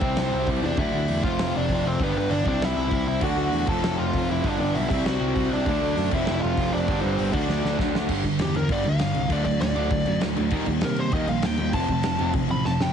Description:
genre	punk rock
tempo	197 BPM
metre	4/4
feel	straight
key	unclear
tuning	A4 = 440 Hz
part	smooth overdriven lead guitar	melody	0.0-12.9 s	B3 to B5	-28 LUFS	right 1 dB	tape echo
part	distorted electric guitar	riff	0.0-12.9 s	F2 to Eb4	-29 LUFS	right 10 dB	distortion
part	sludgy distorted guitar	riff	0.0-12.9 s	F2 to E4	-28 LUFS	left 11 dB	overdrive
part	modern bright picked electric bass	bass	0.0-12.9 s	F1 to C3	-28 LUFS	equal	none
part	big rock drum kit	drums	0.0-12.9 s	crash cymbal, hi-hat, kick drum, snare drum	-29 LUFS	equal	vintage 12-bit sampler grit
part	raw garage guitar	riff	3.2-8.1 s	F2 to D4	-28 LUFS	right 1 dB	overdrive
room	light reverb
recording	heavily compressed radio sound, multiband compression, cassette tape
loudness	-21 LUFS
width	side -8 dB against mid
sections	0.0-8.1 A section; 8.1-12.9 B section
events	half time 0.0-8.1; drum fill 7.5-8.1, 12.6; lead electric guitar solo 8.1-12.9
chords	0.0 C; 0.8 D; 1.2 F; 2.0 G; 2.5 C; 3.2 D; 3.7 F; 4.4 G; 4.9 C; 5.7 D; 6.1 F; 6.9 G; 7.3 D; 8.1 G5; 9.3 D; 10.5 Eb; 11.7 F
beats	0.18 0.48 | 0.79 1.09 1.40 1.70 | 2.01 2.31 2.62 2.92 | 3.23 3.53 3.84 4.14 | 4.45 4.75 5.06 5.36 | 5.67 5.97 6.28 6.58 | 6.88 7.19 7.49 7.79 | 8.10 8.40 8.71 9.01 | 9.31 9.62 9.92 10.22 | 10.53 10.83 11.13 11.43 | 11.74 12.04 12.34 12.64

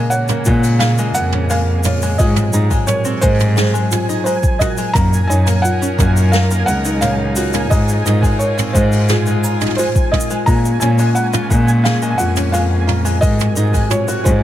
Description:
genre	folktronica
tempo	87 BPM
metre	4/4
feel	straight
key	Bb minor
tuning	A4 = 441 Hz
part	felt-muted upright piano	melody	0.0-14.4 s	C5 to Bb5	-22 LUFS	right 1 dB	ping-pong delay
part	kalimba	second line	0.0-14.4 s	F4 to Bb5	-25 LUFS	left 2 dB	ping-pong delay
part	muted string quartet	sustained chords	0.0-14.4 s	C3 to Bb4	-25 LUFS	left 1 dB	none
part	open-back banjo	arpeggios	0.0-14.4 s	Ab3 to Bb4	-24 LUFS	left 1 dB	ping-pong delay
part	flickering grainy texture	texture	0.0-14.4 s	Ab5	-29 LUFS	right 4 dB	built-in reverb
part	jazz brush drum kit	drums	0.1-14.4 s	hi-hat, shaker, snare drum, toms	-22 LUFS	right 2 dB	none
part	dark cello	bass	0.5-14.4 s	Db2 to Bb2	-16 LUFS	equal	none
part	electronic kick drum	drums	0.5-14.4 s	none	-16 LUFS	equal	overdrive
room	small room ambience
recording	none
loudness	-13 LUFS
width	side -12 dB against mid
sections	0.0-14.4 A section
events	none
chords	0.0 Bbm7; 2.2 Ab7; 5.0 Gb6; 7.7 Fm7/Ab; 10.5 Bbm7; 13.2 Ab7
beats	0.12 0.81 1.50 | 2.19 2.88 3.57 4.26 | 4.95 5.64 6.33 7.02 | 7.71 8.40 9.09 9.78 | 10.47 11.16 11.85 12.54 | 13.23 13.92

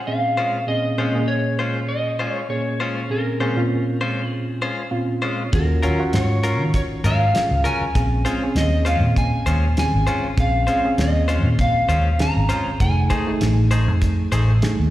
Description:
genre	straight-eighth soul blues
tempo	99 BPM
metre	4/4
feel	swing 56% on 16ths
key	Bb minor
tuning	A4 = 440 Hz
part	electric slide guitar	melody	0.0-14.6 s	Bb4 to Bb5	-24 LUFS	equal	plate reverb, slapback echo
part	reed electric piano	accompaniment	0.1-14.9 s	Bb2 to F5	-24 LUFS	right 1 dB	fast tremolo, plate reverb
part	direct-recorded clean electric guitar	stabs	0.4-14.5 s	Gb3 to C5	-27 LUFS	left 3 dB	spring reverb, plate reverb, slapback echo
part	vintage muted fingered electric bass	bass	5.5-14.9 s	F1 to Eb3	-19 LUFS	equal	none
part	cloth-damped thuddy drum kit	drums	5.5-14.8 s	hi-hat, kick drum, snare drum	-23 LUFS	equal	none
room	light reverb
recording	live gig heard through the venue's PA, recital hall reverb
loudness	-18 LUFS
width	side -14 dB against mid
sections	0.0-14.9 A section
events	reed electric piano fill 4.6-5.5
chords	0.0 Bbm9; 5.5 Ebm9; 8.0 Bbm9; 12.8 F7#9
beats	0.08 | 0.69 1.29 1.90 2.50 | 3.11 3.71 4.32 4.92 | 5.53 6.13 6.74 7.34 | 7.95 8.56 9.16 9.77 | 10.37 10.98 11.59 12.19 | 12.80 13.41 14.01 14.62

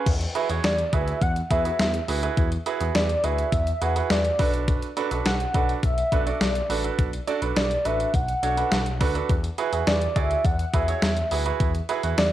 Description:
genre	synth-pop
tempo	104 BPM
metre	4/4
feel	straight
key	unclear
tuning	A4 = 440 Hz
part	bright concert grand piano	accompaniment	0.0-12.3 s	D4 to D5	-28 LUFS	right 7 dB	cassette tape
part	smooth gliding synth bass	bass	0.1-12.3 s	A1 to E2	-27 LUFS	left 1 dB	none
part	clean 12-bit digital drum machine	drums	0.1-12.3 s	crash cymbal, hi-hat, kick drum, snare drum	-25 LUFS	left 1 dB	overdrive
part	warm velvety synth lead	melody	0.6-12.3 s	D5 to F#5	-27 LUFS	equal	chorus, cassette tape, analog delay
room	moderate studio reverb, RT60 0.6 s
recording	home recording on cassette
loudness	-21 LUFS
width	side -12 dB against mid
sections	0.1-12.3 A section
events	none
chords	0.1 Eadd9; 4.4 Bm7; 9.3 Eadd9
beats	| 0.06 0.64 1.22 1.79 | 2.37 2.95 3.53 4.10 | 4.68 5.26 5.83 6.41 | 6.99 7.56 8.14 8.72 | 9.29 9.87 10.45 11.03 | 11.60 12.18

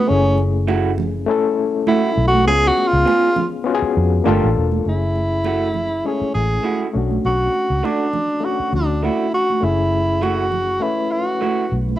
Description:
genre	lush 1970s-style soul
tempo	100 BPM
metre	4/4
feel	swing 54% on 16ths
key	F# minor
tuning	A4 = 441 Hz
part	breathy tenor saxophone	melody	0.0-12.0 s	B3 to G#4	-19 LUFS	right 1 dB	cassette tape
part	overdriven reed electric piano	accompaniment	0.0-12.0 s	G#3 to B4	-22 LUFS	left 7 dB	fast tremolo, cassette tape
part	vintage muted fingered electric bass	bass	0.1-11.9 s	E1 to E#2	-20 LUFS	equal	tube saturation
part	congas	percussion	0.4-12.0 s	none	-26 LUFS	right 7 dB	none
part	electric guitar through a small old amp	riff	0.7-11.6 s	A3 to G#4	-22 LUFS	right 6 dB	cassette tape
room	light reverb, studio reverb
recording	home recording on cassette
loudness	-16 LUFS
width	side -13 dB against mid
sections	0.0-4.9 A section; 4.9-12.0 B section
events	tenor saxophone solo 0.0-4.9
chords	0.1 F#m7; 2.5 C#7; 4.3 Gm7; 4.9 F#m7; 6.9 Bm7; 9.6 F#m7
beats	| 0.09 0.69 1.28 1.88 | 2.47 3.07 3.66 4.26 | 4.86 5.45 6.05 6.65 | 7.24 7.84 8.44 9.03 | 9.63 10.23 10.82 11.42

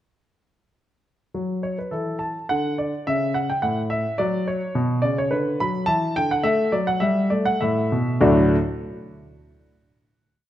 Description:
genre	classical-period piano sonatina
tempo	105 BPM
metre	3/4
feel	rubato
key	D major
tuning	A4 = 441 Hz
part	warm grand piano	solo	1.3-8.6 s	D2 to B5	-20 LUFS	equal	none
room	moderate recital hall reverb, RT60 1.6 s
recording	none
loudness	-20 LUFS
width	side -12 dB against mid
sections	1.3-8.2 A section; 8.2-10.0 final chord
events	none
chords	1.3 D; 3.1 A/C#; 4.2 N.C.; 4.8 Bm; 5.9 Dadd9; 6.4 F#m7; 7.6 A5; 8.2 D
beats	| 1.34 1.92 2.49 | 3.06 3.63 4.19 | 4.75 5.32 5.88 | 6.45 7.02 7.61 | 8.23

